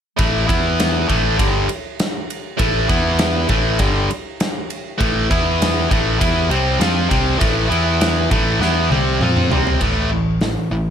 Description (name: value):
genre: classic rock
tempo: 100 BPM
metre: 4/4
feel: straight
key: A minor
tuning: A4 = 440 Hz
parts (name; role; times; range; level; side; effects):
- distorted electric guitar; riff; 0.2-10.9 s; G2 to F4; -17 LUFS; equal; overdrive
- fingered electric bass; bass; 0.2-10.9 s; G1 to F2; -21 LUFS; equal; none
- big rock drum kit; drums; 0.2-10.6 s; crash cymbal, hi-hat, kick drum, ride cymbal, snare drum, toms; -21 LUFS; equal; none
room: light reverb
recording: none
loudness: -15 LUFS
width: side -8 dB against mid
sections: 0.2-9.8 A section; 9.8-10.9 B section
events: drum fill 8.6-9.8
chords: 0.2 A5; 0.5 E5; 1.1 A5; 2.9 E5; 3.5 A5; 5.3 E5; 5.9 Am; 7.7 E5; 8.3 Am; 9.8 A5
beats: | 0.18 0.78 1.38 1.98 | 2.58 3.19 3.79 4.39 | 4.99 5.59 6.19 6.79 | 7.40 8.00 8.60 9.20 | 9.81 10.41